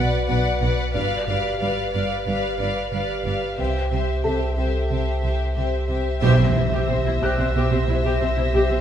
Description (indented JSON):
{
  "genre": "cinematic, suspense film score",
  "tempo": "91 BPM",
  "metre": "4/4",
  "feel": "straight",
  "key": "unclear",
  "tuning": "A4 = 439 Hz",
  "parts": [
    { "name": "clear symphonic violin section", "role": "melody", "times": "0.0-8.8 s", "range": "E5 to F#5", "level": "-30 LUFS", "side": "left 5 dB", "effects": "none" },
    { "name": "rich symphonic violin section", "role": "second line", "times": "0.0-8.8 s", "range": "G4 to D5", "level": "-28 LUFS", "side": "left 1 dB", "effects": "none" },
    { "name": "glass harmonica", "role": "sustained chords", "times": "0.0-8.8 s", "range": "F#4 to F5", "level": "-28 LUFS", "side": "right 1 dB", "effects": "none" },
    { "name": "rich symphonic double bass section", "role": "bass", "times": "0.0-8.6 s", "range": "G1 to C2", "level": "-26 LUFS", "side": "right 2 dB", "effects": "none" },
    { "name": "warm studio cello section", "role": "bass", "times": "0.0-8.8 s", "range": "G2 to C3", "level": "-29 LUFS", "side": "right 3 dB", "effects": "none" },
    { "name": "pure sine sub bass", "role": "drone", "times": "0.0-8.8 s", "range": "G1 to C2", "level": "-26 LUFS", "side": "equal", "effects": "none" },
    { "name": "felt-muted upright piano", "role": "texture", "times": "4.2-8.8 s", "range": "A4 to F#6", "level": "-32 LUFS", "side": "left 2 dB", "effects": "none" },
    { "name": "rich symphonic viola section", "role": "accompaniment", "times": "6.2-8.8 s", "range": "C4 to G4", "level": "-26 LUFS", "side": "equal", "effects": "none" },
    { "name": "impact", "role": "sound effects", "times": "6.2-8.8 s", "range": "none", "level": "-28 LUFS", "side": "equal", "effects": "none" }
  ],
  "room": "moderate scoring stage reverb, RT60 2.0 s",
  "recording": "minimal, uncompressed stereo recording",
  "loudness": "-20 LUFS",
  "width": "side -9 dB against mid",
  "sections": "0.0-6.2 A section; 6.2-8.8 B section",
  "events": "band accent 6.2-6.9; impact 6.2-8.8",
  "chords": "0.0 Bm; 1.0 G7; 3.6 C; 6.2 C/B"
}